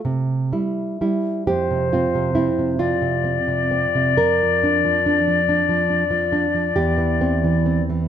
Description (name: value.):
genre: romantic duo for flute and classical guitar.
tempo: 41-48 BPM (dotted quarters).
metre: 6/8.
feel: rubato.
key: unclear.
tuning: A4 = 440 Hz.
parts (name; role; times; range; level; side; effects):
nylon-string guitar; accompaniment; 0.0-8.1 s; E2 to Bb4; -20 LUFS; right 2 dB; none.
silver concert flute; melody; 1.5-7.8 s; C5 to D5; -20 LUFS; left 5 dB; none.
room: light reverb.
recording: close, detailed microphones.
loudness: -17 LUFS.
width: side -9 dB against mid.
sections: 0.0-1.5 A section; 1.5-8.1 B section.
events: none.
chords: 0.0 C; 1.5 F5; 4.2 Bb/F; 6.8 C/E.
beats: 0.04 | 1.48 2.79 | 4.18 5.48 | 6.77.